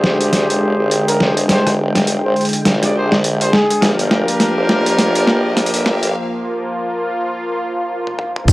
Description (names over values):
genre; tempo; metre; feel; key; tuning
glitch hop; 103 BPM; 4/4; swing 59% on 16ths; unclear; A4 = 442 Hz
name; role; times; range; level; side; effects
warm analog pad; sustained chords; 0.0-8.5 s; D3 to G5; -21 LUFS; equal; chorus, sidechain pumping, cassette tape
warm horn section; stabs; 0.0-8.5 s; D4 to D5; -19 LUFS; equal; sidechain pumping, low-pass filter, cassette tape, tape echo
formant-sweep wobble bass; bass; 0.0-8.5 s; F1 to D2; -19 LUFS; equal; chorus, tube saturation, high-pass filter
boom bap sampler-style drum kit; drums; 0.0-8.5 s; crash cymbal, hi-hat, rim click, snare drum, toms; -16 LUFS; equal; overdrive, small room ambience
riser, swell and impact; sound effects; 2.4-8.5 s; none; -30 LUFS; equal; none
breathy trumpet; melody; 1.1-3.9 s; Ab4 to C5; -20 LUFS; equal; cassette tape, tape echo
electronic kick drum; drums; 8.5 s; none; -5 LUFS; equal; overdrive, small room ambience
maracas; percussion; 8.5 s; none; -21 LUFS; equal; none
room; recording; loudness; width
wet booth ambience, RT60 0.3 s; home recording on cassette, high-pass filter; -14 LUFS; side -19 dB against mid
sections
0.0-8.5 A section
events
build-up 0.0-8.5; drum fill 0.0-6.2, 8.1-8.5; filter sweep on horn section 0.0-8.5; filter sweep 0.0-8.5; break 6.2-8.5; swell 7.6-8.5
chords
0.0 Fm69; 3.8 Gm7